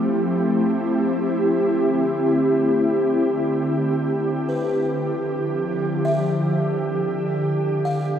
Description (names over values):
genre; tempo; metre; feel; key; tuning
ambient; free time; none; none; D dorian; A4 = 444 Hz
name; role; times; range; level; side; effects
ethereal airy pad; sustained chords; 0.0-8.2 s; D3 to G4; -19 LUFS; equal; ensemble chorus, built-in reverb, shimmer reverb
buzzing kalimba; arpeggios; 4.5-8.2 s; B4 to F5; -29 LUFS; left 1 dB; analog delay, shimmer reverb
room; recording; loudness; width
wet plate reverb, RT60 3.0 s; dreamy mix soaked in reverb; -19 LUFS; side -9 dB against mid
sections
0.0-8.2 A section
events
none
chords
0.0 Fmaj9; 1.1 C69; 4.4 Dm11; 7.6 G7(no3)